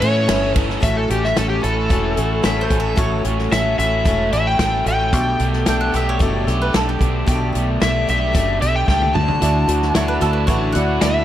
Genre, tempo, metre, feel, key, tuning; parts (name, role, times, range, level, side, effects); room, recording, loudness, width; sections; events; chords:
folk rock and heartland rock; 112 BPM; 4/4; straight; A mixolydian; A4 = 440 Hz
overdriven slide guitar; melody; 0.0-11.2 s; G4 to A5; -21 LUFS; left 1 dB; plate reverb
picked swing-style acoustic guitar; accompaniment; 0.0-11.2 s; A2 to B4; -26 LUFS; left 6 dB; plate reverb
warm upright piano; accompaniment; 0.0-0.7, 9.4-11.2 s; C#4 to E5; -27 LUFS; right 3 dB; plate reverb
accordion; sustained chords; 0.0-11.2 s; B3 to A4; -32 LUFS; right 1 dB
crunchy overdriven guitar; riff; 0.0-11.2 s; A2 to A4; -24 LUFS; right 1 dB
fingered electric bass; bass; 0.0-11.2 s; E1 to A2; -21 LUFS; equal
natural country drum kit; drums; 0.0-11.1 s; hi-hat, kick drum, ride cymbal, snare drum, toms; -21 LUFS; equal
bowl-back mandolin; second line; 2.4-11.0 s; G4 to G5; -26 LUFS; right 3 dB; plate reverb
light reverb; -15 LUFS; side -12 dB against mid
0.8-11.2 A section
electric slide guitar solo 0.8-11.2; drum fill 8.9-9.4
0.0 Aadd9; 0.8 A6; 5.1 Gadd9; 9.1 Dadd9